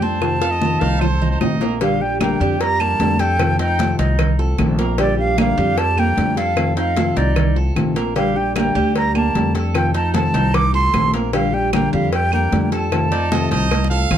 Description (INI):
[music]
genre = latin, Cuban son and guajira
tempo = 151 BPM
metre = 4/4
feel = straight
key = Bb major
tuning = A4 = 440 Hz
[part]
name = silver concert flute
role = melody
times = 0.0-14.1 s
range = D5 to D6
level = -21 LUFS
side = right 1 dB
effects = none
[part]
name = nylon-string guitar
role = accompaniment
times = 0.0-14.2 s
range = C3 to G4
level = -22 LUFS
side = left 4 dB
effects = none
[part]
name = Cuban tres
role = arpeggios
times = 0.0-14.2 s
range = G3 to A4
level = -24 LUFS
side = right 5 dB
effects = none
[part]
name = upright bass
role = bass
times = 0.0-14.2 s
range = Bb1 to F2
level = -20 LUFS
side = equal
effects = none
[part]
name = congas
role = percussion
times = 0.0-14.2 s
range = none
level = -25 LUFS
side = right 2 dB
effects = none
[part]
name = bongos and cowbell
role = percussion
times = 0.2-14.2 s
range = none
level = -27 LUFS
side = left 4 dB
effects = none
[part]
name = claves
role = percussion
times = 0.2-14.2 s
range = none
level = -30 LUFS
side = right 4 dB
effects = none
[part]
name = brilliant trumpet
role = second line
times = 0.4-1.8, 13.1-14.2 s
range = C5 to F5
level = -25 LUFS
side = right 7 dB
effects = none
[sound]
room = light reverb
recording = dark, warm production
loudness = -15 LUFS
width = side -10 dB against mid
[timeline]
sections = 0.0-1.8 A section; 1.8-14.2 B section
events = drum fill 0.2-1.8, 13.7-14.2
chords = 0.2 F7; 1.8 Bb6; 3.4 F9; 5.0 Bb6; 6.6 F7; 8.2 Bb6; 9.7 F7; 11.3 Bb6; 12.9 F7